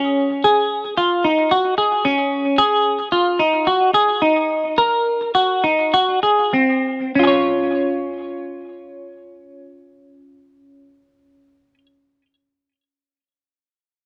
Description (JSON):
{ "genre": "dream pop", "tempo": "95-112 BPM", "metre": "4/4", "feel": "straight", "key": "Db major", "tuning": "A4 = 442 Hz", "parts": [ { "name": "semi-hollow electric guitar", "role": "solo", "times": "0.0-11.9 s", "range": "C4 to Db5", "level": "-18 LUFS", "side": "equal", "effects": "analog chorus, digital delay" } ], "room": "wet booth ambience, RT60 0.2 s", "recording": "none", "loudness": "-18 LUFS", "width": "mono", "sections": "0.0-7.1 A section; 7.1-12.2 B section", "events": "slowing down 2.6-7.1", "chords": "0.0 Db5; 2.6 Ab5; 4.8 Ebm; 5.9 Ab7; 7.1 Db" }